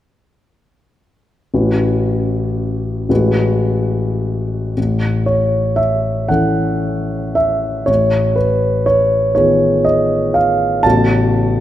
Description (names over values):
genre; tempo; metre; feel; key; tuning
classical, impressionist solo piano; 33-41 BPM (dotted quarters); 6/8; rubato; A major; A4 = 440 Hz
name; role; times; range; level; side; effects
warm concert grand piano; solo; 1.5-11.6 s; A1 to A5; -13 LUFS; equal; none
room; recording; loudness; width
moderate concert hall reverb, RT60 2.3 s; none; -13 LUFS; side -12 dB against mid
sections
1.5-4.8 A section; 4.8-11.6 B section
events
none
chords
1.5 A69; 3.1 F#m11/A; 4.8 A6; 7.9 Amaj9#11; 10.8 A69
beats
| 1.51 3.10 | 4.77 6.32 | 7.88 9.36 | 10.85